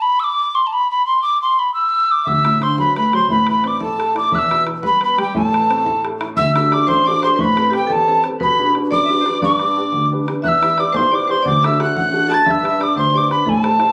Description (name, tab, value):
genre	celtic folk, Celtic jig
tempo	118 BPM (dotted quarters)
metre	6/8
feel	straight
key	A dorian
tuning	A4 = 440 Hz
part	mellow hollow wooden whistle	melody	0.0-13.9 s	G5 to A6	-18 LUFS	equal	plate reverb
part	accordion	second line	2.2-13.9 s	G4 to A5	-29 LUFS	equal	none
part	warm upright piano	accompaniment	2.3-13.9 s	A1 to C5	-22 LUFS	equal	none
part	bodhran	percussion	2.3-13.9 s	none	-32 LUFS	equal	none
part	marimba with hard mallets	second line	6.4-13.9 s	G4 to A5	-26 LUFS	equal	none
room	wet studio reverb, RT60 0.6 s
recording	recorded on a phone in the room, club reverb, compression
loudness	-16 LUFS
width	mono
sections	0.0-6.4 A section; 6.4-13.9 B section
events	none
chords	0.0 N.C.; 2.3 D; 3.3 Am; 4.3 Em; 5.3 Am; 6.4 D; 7.4 Amadd9; 8.4 Bm; 9.4 G; 10.4 Em; 11.4 D; 12.5 G